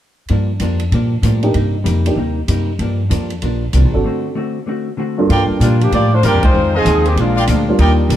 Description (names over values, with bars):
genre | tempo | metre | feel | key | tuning
jazz, big band swing | 192 BPM | 4/4 | swing 64% on 8ths | G minor | A4 = 441 Hz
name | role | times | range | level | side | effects
hollow-body jazz guitar | accompaniment | 0.3-8.2 s | F2 to F#4 | -22 LUFS | left 1 dB | none
upright bass | bass | 0.3-8.2 s | G1 to Bb2 | -15 LUFS | equal | none
swinging big-band drum kit | drums | 0.3-8.2 s | hi-hat, kick drum, ride cymbal | -27 LUFS | equal | none
warm baby grand piano | accompaniment | 1.4-5.6, 7.7-8.1 s | G2 to A4 | -19 LUFS | right 2 dB | none
brilliant trumpet section | stabs | 5.3-7.9 s | Eb4 to Ab5 | -20 LUFS | right 2 dB | none
mellow saxophone section | melody | 5.6-7.7 s | Eb3 to D5 | -16 LUFS | equal | none
room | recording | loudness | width
light reverb | heard from further back in the room | -13 LUFS | side -12 dB against mid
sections
0.3-5.3 A section; 5.3-8.2 B section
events
break 4.0-5.3; band accent 6.4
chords
0.3 Gm7; 1.5 Cm7; 2.8 Gm7; 6.5 Fm7; 7.2 Bb7